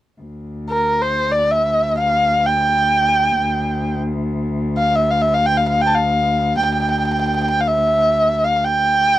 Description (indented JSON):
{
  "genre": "turkish",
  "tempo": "free time",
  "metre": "none",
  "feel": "none",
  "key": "D makam ussak",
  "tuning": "A4 = 444 Hz",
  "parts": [
    { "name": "dark cello", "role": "drone", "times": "0.2-9.2 s", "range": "D2", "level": "-22 LUFS", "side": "left 1 dB", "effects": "stereo widening" },
    { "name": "dark erhu", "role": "melody", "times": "0.7-9.2 s", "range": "Bb4 to A5", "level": "-16 LUFS", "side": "equal", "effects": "none" }
  ],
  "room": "light reverb",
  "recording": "dry, close 1970s-style studio recording",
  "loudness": "-15 LUFS",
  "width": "side -14 dB against mid",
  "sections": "0.2-9.2 A section",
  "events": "none",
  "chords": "none",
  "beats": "free time"
}